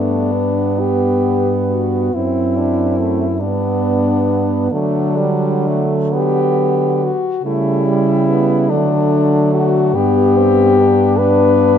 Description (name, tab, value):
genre	classical, lyrical piece for horn quartet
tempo	41-49 BPM (dotted quarters)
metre	6/8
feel	rubato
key	G major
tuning	A4 = 441 Hz
part	clear French horn	melody	0.0-11.8 s	D4 to B4	-17 LUFS	left 5 dB	none
part	clear French horn	second line	0.0-11.8 s	G3 to D4	-20 LUFS	right 7 dB	none
part	mellow French horn	accompaniment	0.0-11.8 s	F#3 to C4	-20 LUFS	left 2 dB	none
part	mellow French horn	bass	0.0-11.8 s	F#2 to D3	-18 LUFS	right 2 dB	none
room	moderate scoring stage reverb, RT60 1.8 s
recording	dark, warm production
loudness	-13 LUFS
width	side -8 dB against mid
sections	0.0-11.8 A section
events	none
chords	0.0 G; 2.1 F#m7b5; 3.4 G; 4.7 D; 7.5 C#m7b5; 8.7 D; 9.9 G